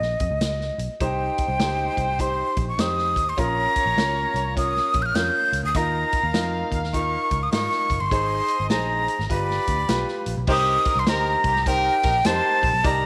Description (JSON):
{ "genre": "uptempo 1960s-style soul", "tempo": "101 BPM", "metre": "4/4", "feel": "swing 64% on 8ths", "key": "Bb dorian", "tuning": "A4 = 440 Hz", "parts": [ { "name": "breathy jazz flute", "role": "melody", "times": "0.0-13.1 s", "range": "Eb5 to G6", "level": "-25 LUFS", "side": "equal", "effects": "slapback echo" }, { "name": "vintage muted picked electric bass", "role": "bass", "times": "0.0-13.1 s", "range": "Gb1 to Ab2", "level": "-30 LUFS", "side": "equal", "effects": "none" }, { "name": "vintage drum kit", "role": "drums", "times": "0.0-13.0 s", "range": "crash cymbal, hi-hat, kick drum, snare drum", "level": "-30 LUFS", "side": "equal", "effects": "none" }, { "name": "clear horn section", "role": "second line", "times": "1.0-12.7 s", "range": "C4 to F5", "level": "-36 LUFS", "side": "equal", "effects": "none" }, { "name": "clear baby grand piano", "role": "accompaniment", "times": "1.0-13.1 s", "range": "Db4 to D5", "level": "-31 LUFS", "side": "equal", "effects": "none" } ], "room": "moderate echo chamber reverb, RT60 1.8 s, small room ambience", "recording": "none", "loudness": "-22 LUFS", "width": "mono", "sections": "0.0-10.5 A section; 10.5-13.1 B section", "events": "none", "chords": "0.0 Bbm; 1.0 Cm; 3.4 Bbm; 5.7 Ebsus2; 8.1 Ab; 9.3 G7; 10.5 Cm7", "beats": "0.42 | 1.01 1.60 2.20 2.79 | 3.38 3.97 4.56 5.16 | 5.75 6.34 6.93 7.53 | 8.12 8.71 9.30 9.89 | 10.49 11.08 11.67 12.26 | 12.85" }